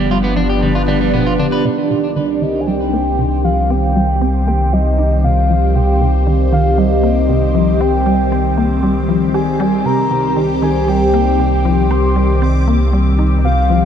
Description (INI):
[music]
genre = ambient, sequencer-driven space music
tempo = 117 BPM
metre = 4/4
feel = straight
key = C minor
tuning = A4 = 441 Hz
[part]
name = phased analog pad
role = sustained chords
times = 0.0-13.8 s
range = Eb3 to C5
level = -17 LUFS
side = equal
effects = phaser, chorus
[part]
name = electric guitar at the edge of break-up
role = arpeggios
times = 0.0-1.6 s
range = G3 to B4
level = -21 LUFS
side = right 3 dB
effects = auto-pan, tape echo
[part]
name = warm sub bass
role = bass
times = 0.0-13.8 s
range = G1 to C2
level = -16 LUFS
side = equal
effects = none
[part]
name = bubbling stepped-filter texture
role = texture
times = 0.0-13.8 s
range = D5 to D6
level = -33 LUFS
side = equal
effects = chorus, built-in reverb
[part]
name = resonant blip pluck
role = riff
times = 0.1-13.8 s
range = B2 to G4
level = -19 LUFS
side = left 1 dB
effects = chorus, tape echo
[part]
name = soft octave-layered synth lead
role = melody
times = 1.6-13.8 s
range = D5 to C6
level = -20 LUFS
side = equal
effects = chorus, vintage 12-bit sampler grit, tape echo
[sound]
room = moderate plate reverb, RT60 2.8 s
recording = dark, warm production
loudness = -12 LUFS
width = side -8 dB against mid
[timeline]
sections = 0.0-1.7 A section; 1.7-13.8 B section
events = fade-in on synth texture 1.7-13.8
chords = 0.0 G7; 1.7 Cm